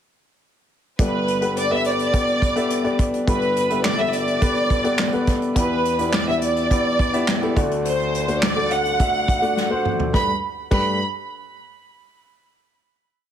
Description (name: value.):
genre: piano-driven pop.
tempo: 105 BPM.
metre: 4/4.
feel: straight.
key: G major.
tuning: A4 = 439 Hz.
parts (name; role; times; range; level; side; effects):
warm symphonic violin section; melody; 1.0-11.0 s; B4 to B5; -22 LUFS; right 1 dB; plate reverb, tape echo.
warm upright piano; accompaniment; 1.0-11.0 s; G1 to E5; -22 LUFS; left 2 dB; plate reverb.
unplugged drum kit; drums; 1.0-10.8 s; crash cymbal, handclaps, hi-hat, kick drum, snare drum, toms; -23 LUFS; right 1 dB; none.
room: moderate small room reverb, RT60 0.5 s.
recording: heavily compressed radio sound, multiband compression.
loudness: -18 LUFS.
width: side -9 dB against mid.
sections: 1.0-10.1 verse; 10.1-12.4 final chord.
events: drum fill 9.6-10.1.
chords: 1.0 Gadd9; 5.6 Em7; 7.6 D; 10.1 Gadd9.